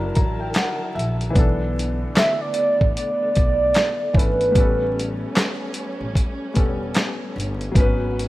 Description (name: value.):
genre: lo-fi hip hop.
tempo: 75 BPM.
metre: 4/4.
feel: swing 62% on 16ths.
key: unclear.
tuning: A4 = 440 Hz.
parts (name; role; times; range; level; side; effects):
felt-muted upright piano; accompaniment; 0.0-8.3 s; E3 to A#5; -27 LUFS; left 2 dB; cassette tape.
warm studio string section; sustained chords; 0.0-8.3 s; D3 to A5; -32 LUFS; equal; none.
upright bass; bass; 0.0-8.3 s; E1 to B1; -27 LUFS; equal; none.
dusty soul sampler-style drum kit; drums; 0.2-8.3 s; handclaps, hi-hat, kick drum, snare drum; -19 LUFS; equal; vintage 12-bit sampler grit.
warbly nostalgic lead; melody; 2.2-5.4 s; B4 to E5; -21 LUFS; right 2 dB; chorus.
room: small room ambience.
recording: rough home demo mix, vinyl crackle.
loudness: -18 LUFS.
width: side -17 dB against mid.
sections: 0.0-8.3 A section.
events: felt piano fill 0.0-1.4.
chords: 0.0 F#7alt; 1.4 Bm11; 4.6 A9; 7.8 G#m7.